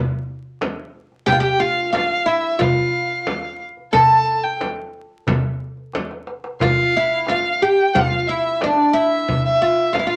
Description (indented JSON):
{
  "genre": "Arabic maqam ensemble",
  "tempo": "90 BPM",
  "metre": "4/4",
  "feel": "straight",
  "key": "unclear",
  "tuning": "A4 = 441 Hz",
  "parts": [
    { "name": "darbuka", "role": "percussion", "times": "0.1-10.1 s", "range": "none", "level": "-28 LUFS", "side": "equal", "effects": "none" },
    { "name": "frame drum", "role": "percussion", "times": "0.6-10.1 s", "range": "none", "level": "-28 LUFS", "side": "equal", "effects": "none" },
    { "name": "oud", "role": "melody", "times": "1.3-10.2 s", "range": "D4 to A4", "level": "-21 LUFS", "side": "equal", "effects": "none" },
    { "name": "rich violin", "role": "second line", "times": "1.3-10.2 s", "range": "D5 to A5", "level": "-22 LUFS", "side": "equal", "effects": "none" }
  ],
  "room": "moderate small room reverb, RT60 0.5 s",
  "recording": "vinyl crackle",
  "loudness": "-19 LUFS",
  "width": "mono",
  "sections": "0.0-10.2 A section",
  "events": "drum fill 5.9-6.6",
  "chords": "none",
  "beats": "0.62 | 1.28 1.95 2.62 3.28 | 3.95 4.62 5.28 5.95 | 6.62 7.28 7.95 8.62 | 9.28 9.95"
}